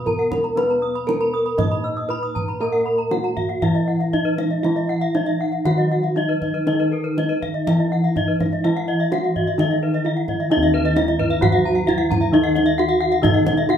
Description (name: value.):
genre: Balinese gamelan.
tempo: 118-132 BPM.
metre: 4/4.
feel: straight.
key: Eb pelog.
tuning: A4 = 441 Hz.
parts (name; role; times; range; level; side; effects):
gamelan-type bronze metallophone; melody; 0.0-13.8 s; Eb4 to Eb5; -22 LUFS; equal; none.
gamelan-type bronze metallophone; accompaniment; 0.0-13.8 s; Eb3 to Eb4; -29 LUFS; right 1 dB; none.
gamelan-type bronze metallophone; arpeggios; 0.0-13.7 s; Cb5-20c to Eb6; -28 LUFS; right 3 dB; none.
gamelan-type bossed gongs; bass; 0.0-13.8 s; Eb2 to Cb5-20c; -23 LUFS; equal; none.
gamelan-type bronze metallophone; arpeggios; 0.1-13.8 s; Bb4-30c to Fb6+20c; -26 LUFS; left 5 dB; none.
kendang; percussion; 0.1-13.7 s; none; -26 LUFS; right 1 dB; none.
room: moderate studio reverb, RT60 0.6 s.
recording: band playing live in one room.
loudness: -17 LUFS.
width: side -8 dB against mid.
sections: 0.0-10.5 A section; 10.5-13.8 B section.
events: none.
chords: none.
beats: 0.06 | 0.57 1.08 1.59 2.10 | 2.60 3.11 3.62 4.13 | 4.64 5.15 5.66 6.16 | 6.67 7.18 7.67 8.16 | 8.65 9.12 9.59 10.06 | 10.51 10.97 11.42 11.88 | 12.33 12.78 13.24 13.69.